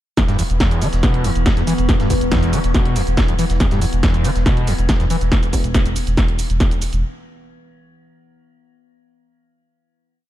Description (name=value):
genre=driving peak-time techno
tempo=140 BPM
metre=4/4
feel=straight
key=unclear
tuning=A4 = 440 Hz
part: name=screaming distorted acid line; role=riff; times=0.2-5.2 s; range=E2 to E3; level=-21 LUFS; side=equal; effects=distortion, analog chorus, vintage 12-bit sampler grit, sidechain pumping, tape echo
part: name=metallic inharmonic drone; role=drone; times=0.5-5.4 s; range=E3 to B3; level=-26 LUFS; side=left 2 dB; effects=chorus, built-in reverb, sidechain pumping
part: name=dusty soul sampler-style drum kit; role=drums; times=0.2-5.2 s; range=hi-hat, snare drum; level=-36 LUFS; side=equal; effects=none
part: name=electronic kick drum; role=drums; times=0.2-6.7 s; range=none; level=-18 LUFS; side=equal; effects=distortion
part: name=punchy analog drum machine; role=drums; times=0.2-7.0 s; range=hi-hat, shaker, snare drum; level=-23 LUFS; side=equal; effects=none
part: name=saturated sub bass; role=bass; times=0.3-7.0 s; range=E1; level=-22 LUFS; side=equal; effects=sidechain pumping, low-pass filter
room=digital ambience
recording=dark, warm production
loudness=-15 LUFS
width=side -13 dB against mid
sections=0.2-7.0 drop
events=drop 0.2-7.0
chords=0.2 E5